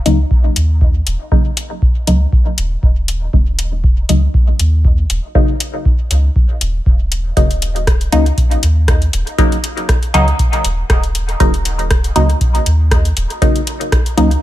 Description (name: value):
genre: dub techno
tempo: 119 BPM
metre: 4/4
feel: swing 54% on 16ths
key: Eb minor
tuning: A4 = 440 Hz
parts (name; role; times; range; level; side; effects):
- filtered dub chord stab; stabs; 0.1-14.3 s; Db3 to Eb4; -18 LUFS; left 1 dB; chorus, phaser, sidechain pumping, dub echo
- soft dub sub bass; bass; 0.1-14.4 s; Eb1 to Eb2; -15 LUFS; equal; tube saturation, sidechain pumping
- deep house drum kit; drums; 0.1-14.4 s; hi-hat, rim click; -20 LUFS; left 1 dB; overdrive, small room ambience, dub echo
- electronic kick drum; drums; 0.3-14.0 s; none; -14 LUFS; equal; small room ambience
room: digital ambience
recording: none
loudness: -12 LUFS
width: side -14 dB against mid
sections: 0.0-14.4 A section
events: none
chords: 0.0 Ebm7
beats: 0.31 0.81 | 1.32 1.82 2.33 2.83 | 3.33 3.84 4.34 4.85 | 5.35 5.86 6.36 6.86 | 7.37 7.87 8.38 8.88 | 9.38 9.89 10.39 10.90 | 11.40 11.90 12.41 12.91 | 13.42 13.92